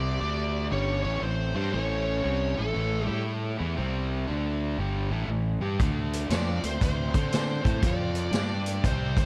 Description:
blues rock power trio and southern rock; 118 BPM; 4/4; swing 65% on 8ths; A4 = 440 Hz
smooth overdriven lead guitar; melody; 0.0-3.2, 6.3-9.3 s; A4 to D5; -35 LUFS; equal
biting lead guitar; second line; 0.0-3.2, 6.3-9.3 s; A3 to G4; -41 LUFS; equal; overdrive, analog delay
overdriven electric guitar; riff; 0.0-9.3 s; G2 to D5; -35 LUFS; equal
fuzz fingered electric bass; bass; 0.0-9.3 s; G1 to D3; -32 LUFS; equal; overdrive
vintage drum kit; drums; 5.8-9.3 s; hi-hat, kick drum, snare drum; -30 LUFS; equal
moderate lush hall reverb, RT60 2.2 s; big arena sound; -28 LUFS; mono
0.0-9.3 A section
0.2 D5; 0.7 A7#9; 3.8 C5; 4.3 D5; 4.8 A5; 5.8 Dm7; 7.8 F5; 8.3 G5
0.21 0.72 1.23 | 1.73 2.24 2.75 3.26 | 3.77 4.27 4.78 5.29 | 5.79 6.30 6.81 7.32 | 7.82 8.33 8.84

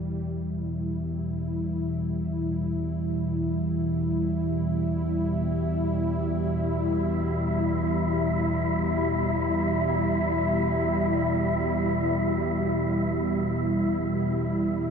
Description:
dark ambient drone; free time; E minor; A4 = 440 Hz
sweeping resonant pad; sustained chords; 0.0-14.9 s; B2 to E4; -27 LUFS; right 1 dB; chorus
deep rumbling drone; drone; 0.0-14.9 s; E2 to E3; -28 LUFS; left 1 dB; built-in reverb
wind-like tuned noise texture; texture; 6.3-14.9 s; E4 to E5; -30 LUFS; left 2 dB; built-in reverb
moderate huge ambient reverb, RT60 8.8 s; -24 LUFS; side -6 dB against mid
0.0-14.9 A section
0.0 Em
free time

